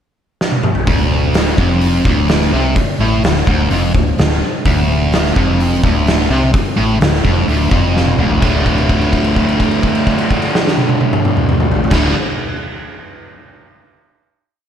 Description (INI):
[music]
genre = blues rock power trio and southern rock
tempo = 127 BPM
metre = 4/4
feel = straight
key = unclear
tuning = A4 = 440 Hz
[part]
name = oversized low-tuned drum kit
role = drums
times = 0.4-12.0 s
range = crash cymbal, hi-hat, kick drum, snare drum, toms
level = -15 LUFS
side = equal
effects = none
[part]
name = sludgy distorted guitar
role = riff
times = 0.9-12.1 s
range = D2 to D3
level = -16 LUFS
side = equal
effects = overdrive, slapback echo
[part]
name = vintage muted fingered electric bass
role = bass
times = 0.9-12.1 s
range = D1 to C2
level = -18 LUFS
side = equal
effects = none
[sound]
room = light reverb, small room ambience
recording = none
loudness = -12 LUFS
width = side -9 dB against mid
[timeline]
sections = 0.0-0.9 pickup bar; 0.9-8.4 riff; 8.4-12.2 final chord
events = drum fill 0.4-0.9, 8.0-8.4; held note 8.4-11.9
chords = 0.0 N.C.; 0.9 D5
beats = 0.40 | 0.88 1.35 1.82 2.30 | 2.77 3.24 3.71 4.19 | 4.66 5.13 5.60 6.07 | 6.54 7.01 7.48 7.95 | 8.42 8.89 9.37 9.84 | 10.31 10.78 11.25 11.73